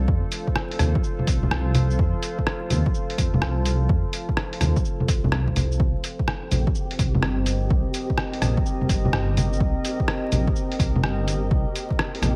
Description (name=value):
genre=future garage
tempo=126 BPM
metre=4/4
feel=swing 66% on 16ths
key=C dorian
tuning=A4 = 436 Hz
part: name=deep dark ambient pad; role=sustained chords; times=0.0-12.4 s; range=C4 to Eb5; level=-32 LUFS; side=equal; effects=chorus, built-in reverb, sidechain pumping
part: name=dark detuned saw bass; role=bass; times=0.0-12.4 s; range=G1 to F2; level=-26 LUFS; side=equal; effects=sidechain pumping
part: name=electronic kick drum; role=drums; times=0.1-12.0 s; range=none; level=-26 LUFS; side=equal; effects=overdrive
part: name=lo-fi sampler-style drum kit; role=drums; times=0.3-12.3 s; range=bongos, hi-hat, rim click, shaker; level=-28 LUFS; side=equal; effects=none
part: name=flickering grainy texture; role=texture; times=6.1-12.4 s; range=G4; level=-42 LUFS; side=equal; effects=none
room=light reverb, digital ambience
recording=vinyl crackle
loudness=-23 LUFS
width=mono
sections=0.0-12.4 A section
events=none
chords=0.0 F; 5.8 Cm7